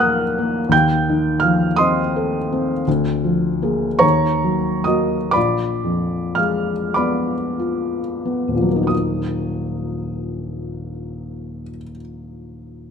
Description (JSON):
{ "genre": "classical, romantic nocturne for solo piano", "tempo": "28-58 BPM (dotted quarters)", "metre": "6/8", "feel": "rubato", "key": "Eb minor", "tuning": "A4 = 440 Hz", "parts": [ { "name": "felt-muted upright piano", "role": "solo", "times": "0.0-12.9 s", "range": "Eb1 to Bb6", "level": "-18 LUFS", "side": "equal", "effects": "none" } ], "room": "moderate recital hall reverb, RT60 1.6 s", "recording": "close, detailed microphones", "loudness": "-17 LUFS", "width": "side -7 dB against mid", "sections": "0.0-8.9 A section; 8.9-12.6 B section", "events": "slowing down 1.8-8.9", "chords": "0.0 Ebm; 0.7 F7/Eb; 2.9 Bb7/D; 4.0 Ebm; 5.4 Bb7b9; 8.9 Ebm", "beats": "| 0.72 1.79 | 2.87 4.03 | 5.36 6.97 | 8.91 10.76" }